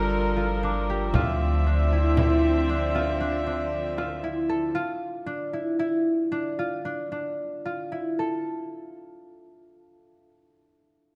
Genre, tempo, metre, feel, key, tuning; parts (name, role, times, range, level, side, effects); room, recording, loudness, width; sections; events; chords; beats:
contemporary instrumental, chamber music in an uneven meter; 116 BPM; 7/4; straight; D minor; A4 = 440 Hz
warm studio string section; sustained chords; 0.0-4.7 s; D3 to E5; -31 LUFS; equal
concert harp; arpeggios; 0.0-10.5 s; D4 to A4; -30 LUFS; equal
upright bass; bass; 0.0-4.7 s; G1 to D2; -29 LUFS; equal
glockenspiel with rubber mallets; texture; 0.7-1.4 s; D6; -42 LUFS; equal
frame drum; percussion; 1.1-4.4 s; -32 LUFS; equal
light reverb; close, detailed microphones; -26 LUFS; mono
0.0-8.5 A section
slowing down 4.2-8.5
0.0 Gm9; 1.1 Dm9; 4.8 Dmadd9
0.12 0.63 | 1.15 1.66 2.18 2.69 3.21 3.73 4.24 | 4.76 5.28 5.80 6.32 6.85 7.38 7.92